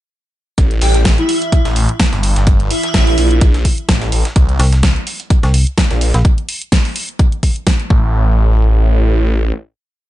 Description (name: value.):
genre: bass house.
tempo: 127 BPM.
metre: 4/4.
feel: swing 55% on 16ths.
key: A phrygian.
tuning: A4 = 442 Hz.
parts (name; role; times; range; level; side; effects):
phased detuned saw bass; bass; 0.6-9.5 s; G1 to C2; -13 LUFS; equal; phaser, overdrive, sidechain pumping.
big-room dance drum kit; drums; 0.6-7.9 s; hi-hat, snare drum; -19 LUFS; equal; none.
breakbeat sampler-style drum kit; drums; 0.6-6.2 s; hi-hat, snare drum; -26 LUFS; right 1 dB; sidechain pumping on hats, high-pass filter on hats, high-pass filter on snare.
electronic kick drum; drums; 0.6-8.0 s; none; -12 LUFS; equal; none.
airy dreamy lead; melody; 0.8-3.4 s; E4 to G4; -18 LUFS; right 1 dB; chorus, digital delay.
metallic FM bass; bass; 4.6-6.2 s; Bb1 to C2; -12 LUFS; equal; overdrive, sidechain pumping.
room: digital ambience.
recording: nothing above 10.3 kHz.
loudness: -11 LUFS.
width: side -14 dB against mid.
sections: 0.6-8.1 drop; 8.1-10.1 final hit.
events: drop 0.6-8.1.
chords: 0.6 A5; 4.4 Bbsus2; 7.9 N.C..